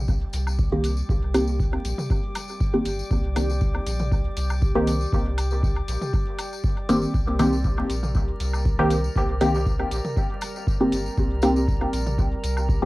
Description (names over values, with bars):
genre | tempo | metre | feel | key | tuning
dub techno | 119 BPM | 4/4 | swing 53% on 16ths | C minor | A4 = 440 Hz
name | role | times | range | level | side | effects
warm sub bass | bass | 0.0-12.9 s | G1 to C2 | -26 LUFS | equal | tube saturation, sidechain pumping
drifting glass-harmonics texture | texture | 0.0-12.9 s | G3 to Bb4 | -34 LUFS | equal | chorus, built-in reverb, sidechain pumping, cassette tape
electronic kick drum | drums | 0.1-12.8 s | none | -24 LUFS | equal | cassette tape
tambourine | percussion | 0.1-12.8 s | none | -40 LUFS | left 6 dB | none
electronic hi-hat | drums | 0.3-12.5 s | none | -40 LUFS | right 1 dB | cassette tape
electronic woodblock and toms | percussion | 0.5-12.7 s | none | -35 LUFS | equal | sidechain pumping on perc, cassette tape, sidechain pumping on toms, dub echo
filtered dub chord stab | stabs | 0.7-12.9 s | Eb3 to G4 | -24 LUFS | equal | phaser, sidechain pumping, cassette tape, dub echo
room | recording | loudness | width
light reverb | home recording on cassette, vinyl crackle | -21 LUFS | side -19 dB against mid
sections
0.0-12.9 A section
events
none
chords
0.0 Cm7